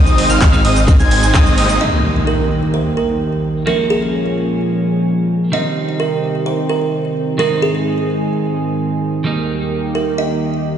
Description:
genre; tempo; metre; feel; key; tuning
EDM, festival progressive house; 129 BPM; 4/4; straight; Eb mixolydian; A4 = 439 Hz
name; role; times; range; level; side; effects
clean electric guitar; accompaniment; 0.0-10.8 s; Eb3 to Eb4; -20 LUFS; right 2 dB; sidechain pumping, ping-pong delay
lush unison pad; sustained chords; 0.0-10.8 s; Eb2 to Ab4; -22 LUFS; equal; chorus, sidechain pumping
wide unison lead; arpeggios; 0.0-1.8 s; Eb6 to Ab6; -21 LUFS; left 1 dB; sidechain pumping, ping-pong delay
supersaw chords; riff; 0.0-1.8 s; Ab3 to Ab5; -20 LUFS; right 1 dB; sidechain pumping, low-pass filter, ping-pong delay
wide detuned saw bass; bass; 0.0-1.8 s; Ab1; -16 LUFS; equal; chorus, sidechain pumping
pop drum kit; drums; 0.1-1.8 s; cabasa, handclaps, hi-hat, ride cymbal; -23 LUFS; equal; overdrive, low-pass filter on hats, low-pass filter on cymbals, low-pass filter on perc, low-pass filter on snare, low-pass filter on room
electronic kick drum; drums; 0.4-1.4 s; none; -11 LUFS; equal; none
kalimba; melody; 1.8-10.8 s; Ab4 to Eb5; -20 LUFS; right 3 dB; ping-pong delay
impact; sound effects; 1.8-3.7 s; none; -22 LUFS; left 1 dB; none
room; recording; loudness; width
light reverb; played on a big sound system in a bare room, stone room reverb, nothing above 10.3 kHz; -13 LUFS; side -9 dB against mid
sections
0.0-1.8 A section; 1.8-10.8 B section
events
drop 0.0-1.8; band accent 1.3; impact 1.8-3.7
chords
0.0 Ab; 1.8 Eb; 3.7 Bbm7; 5.5 Cm; 7.4 Ab; 9.3 Eb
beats
0.41 0.88 1.34 | 1.81 2.28 2.74 3.21 | 3.67 4.14 4.60 5.07 | 5.53 6.00 6.46 6.93 | 7.39 7.86 8.32 8.79 | 9.25 9.72 10.18 10.65

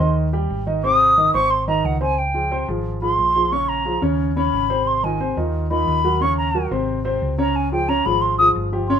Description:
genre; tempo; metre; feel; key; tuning
Afro-Cuban jazz; 178 BPM; 4/4; straight; Ab major; A4 = 442 Hz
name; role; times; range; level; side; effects
mellow hollow concert flute; melody; 0.0-9.0 s; Gb5 to Eb6; -18 LUFS; equal; none
warm baby grand piano; accompaniment; 0.0-9.0 s; C3 to C6; -22 LUFS; equal; none
hollow-body short-scale fingered electric bass; bass; 0.0-9.0 s; G1 to Eb2; -24 LUFS; equal; none
room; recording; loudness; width
light reverb; minimal, uncompressed stereo recording; -17 LUFS; side -8 dB against mid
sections
0.0-2.2 A section; 2.2-9.0 A section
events
flute solo 0.0-9.0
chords
0.0 Abmaj7; 1.5 Ab; 2.2 Dbmaj7; 3.5 Bbm7; 4.2 Abmadd11; 4.9 Ab6; 6.2 Ebm7; 6.9 Ab; 7.6 Db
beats
0.16 0.49 | 0.83 1.17 1.50 1.84 | 2.18 2.51 2.85 3.19 | 3.52 3.86 4.20 4.53 | 4.87 5.20 5.54 5.88 | 6.21 6.55 6.88 7.22 | 7.55 7.89 8.22 8.56 | 8.89

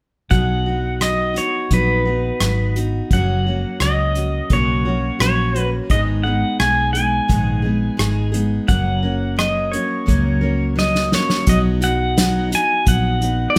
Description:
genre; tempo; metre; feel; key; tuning
honky-tonk and classic country; 86 BPM; 4/4; straight; B major; A4 = 442 Hz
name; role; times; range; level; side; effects
pedal steel guitar; melody; 0.3-13.6 s; B4 to G#5; -24 LUFS; equal; none
picked steel-string acoustic guitar; accompaniment; 0.3-13.6 s; F#2 to A#4; -24 LUFS; equal; none
vintage muted fingered electric bass; bass; 0.3-13.6 s; F#1 to C#2; -23 LUFS; equal; none
unplugged drum kit; drums; 0.3-13.6 s; hi-hat, kick drum, rim click, snare drum; -22 LUFS; equal; none
room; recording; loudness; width
light reverb; none; -18 LUFS; mono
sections
0.3-11.5 A section; 11.5-13.6 B section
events
drum fill 10.8-11.5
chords
0.3 B; 3.1 F#; 5.9 G#m; 8.7 F#; 11.5 B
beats
| 0.32 1.02 1.72 2.41 | 3.11 3.81 4.51 5.21 | 5.90 6.60 7.30 8.00 | 8.69 9.39 10.08 10.78 | 11.47 12.17 12.87 13.56

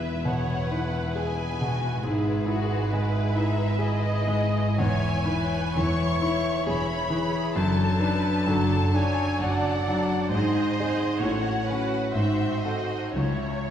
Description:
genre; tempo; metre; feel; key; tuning
classical; 65 BPM; 3/4; uneven beats, rubato; E major, C# minor from 4.8 s; A4 = 440 Hz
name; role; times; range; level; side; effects
bright grand piano; melody; 0.0-13.7 s; C#2 to A4; -26 LUFS; left 1 dB; none
warm symphonic violin section; melody; 0.0-13.7 s; B4 to C#6; -33 LUFS; left 2 dB; none
rich studio violin section; second line; 0.0-13.7 s; B#3 to C#5; -33 LUFS; equal; none
rich symphonic viola section; accompaniment; 0.0-13.7 s; F#4 to E5; -33 LUFS; right 2 dB; none
rich symphonic cello section; bass; 0.0-13.7 s; E2 to C#3; -31 LUFS; right 2 dB; none
rich symphonic double bass section; bass; 0.0-13.7 s; E1 to C#2; -32 LUFS; right 1 dB; none
room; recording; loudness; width
wet scoring stage reverb, RT60 1.5 s; recorded in a church or concert hall, vinyl crackle; -23 LUFS; side -9 dB against mid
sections
0.0-13.7 A section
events
none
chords
0.0 E; 2.0 E/G#; 4.8 C#m/E; 7.6 D/F#; 10.3 G#; 11.2 F#m/A; 12.1 G#7b9; 13.2 C#m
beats
0.27 1.16 | 2.04 2.91 3.80 | 4.79 5.77 6.67 | 7.56 8.48 9.40 | 10.31 11.21 12.15 | 13.15

